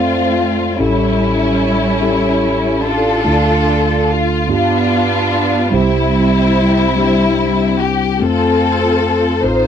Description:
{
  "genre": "gospel",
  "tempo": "49 BPM (dotted quarters)",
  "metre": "6/8",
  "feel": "straight",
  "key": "F major",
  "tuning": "A4 = 440 Hz",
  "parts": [
    { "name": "warm symphonic string section", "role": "melody", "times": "0.0-9.7 s", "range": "G3 to C5", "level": "-14 LUFS", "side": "left 1 dB", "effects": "none" },
    { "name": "mellow tine electric piano", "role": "accompaniment", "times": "0.0-9.7 s", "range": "A1 to D5", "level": "-16 LUFS", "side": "moving between left 4 dB and right 4 dB", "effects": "auto-pan" }
  ],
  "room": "light reverb",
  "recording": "dry, close 1970s-style studio recording",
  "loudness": "-12 LUFS",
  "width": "side -8 dB against mid",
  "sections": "0.0-9.7 A section",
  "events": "none",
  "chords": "0.0 F; 0.8 A7; 3.3 Dm; 4.5 G7; 5.7 C; 8.2 F",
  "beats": "| 0.80 2.04 | 3.27 4.50 | 5.74 6.97 | 8.21 9.44"
}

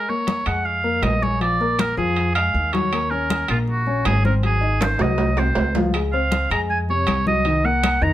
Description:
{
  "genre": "latin, salsa",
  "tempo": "159 BPM",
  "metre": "4/4",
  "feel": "straight",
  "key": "Bb minor",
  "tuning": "A4 = 441 Hz",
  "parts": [
    { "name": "clear oboe", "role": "melody", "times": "0.0-8.1 s", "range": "F4 to Bb5", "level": "-22 LUFS", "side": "right 2 dB", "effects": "none" },
    { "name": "dark baby grand piano", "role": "accompaniment", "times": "0.0-8.1 s", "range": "C3 to Eb5", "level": "-25 LUFS", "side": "left 4 dB", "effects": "none" },
    { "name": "congas", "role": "percussion", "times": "0.1-8.1 s", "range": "none", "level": "-26 LUFS", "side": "left 2 dB", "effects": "none" },
    { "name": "timbales", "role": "percussion", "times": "0.3-8.0 s", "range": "none", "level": "-26 LUFS", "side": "right 4 dB", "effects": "none" },
    { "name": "upright bass", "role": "bass", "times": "0.5-8.1 s", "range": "Ab1 to F2", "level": "-23 LUFS", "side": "equal", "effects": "none" },
    { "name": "claves", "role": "percussion", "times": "0.5-8.0 s", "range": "none", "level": "-36 LUFS", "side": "left 4 dB", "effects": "none" }
  ],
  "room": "light reverb",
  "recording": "none",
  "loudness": "-18 LUFS",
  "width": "side -13 dB against mid",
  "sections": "0.0-8.1 A section",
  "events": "drum fill 4.8-6.0",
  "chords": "0.0 Bbm7; 1.4 Bb7; 2.9 Ebm7; 4.4 Ab7; 6.0 Dbmaj7; 7.5 Cm7b5",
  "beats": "0.28 0.66 1.04 | 1.42 1.79 2.17 2.55 | 2.93 3.31 3.68 4.06 | 4.44 4.82 5.20 5.57 | 5.95 6.33 6.71 7.08 | 7.46 7.84"
}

